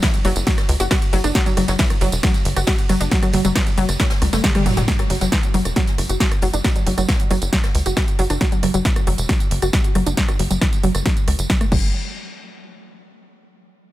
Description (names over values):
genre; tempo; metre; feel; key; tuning
driving peak-time techno; 136 BPM; 4/4; straight; unclear; A4 = 445 Hz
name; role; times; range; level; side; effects
analog pluck; riff; 0.0-11.9 s; E3 to F#4; -23 LUFS; equal; chorus, tube saturation, sidechain pumping, tape echo
electronic kick drum; drums; 0.0-11.8 s; none; -20 LUFS; equal; none
jazz brush drum kit; drums; 0.0-8.3 s; hi-hat, snare drum, tambourine; -34 LUFS; left 1 dB; none
techno drum kit; drums; 0.0-11.8 s; crash cymbal, hi-hat, ride cymbal, rim click, snare drum, tambourine, toms; -23 LUFS; equal; sidechain pumping on hats, sidechain pumping on cymbals, sidechain pumping on perc, sidechain pumping on toms
tight sequencer bass; bass; 0.2-11.9 s; E1 to C#2; -21 LUFS; equal; sidechain pumping
room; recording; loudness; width
little or no reverb; none; -16 LUFS; side -15 dB against mid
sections
0.0-4.9 A section; 4.9-11.9 B section; 11.9-13.7 C section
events
drop 0.0-4.9; drum fill 4.2-4.9; band accent 4.4; filter sweep on synth arpeggio sound 4.9-11.9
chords
0.0 F#5; 11.7 N.C.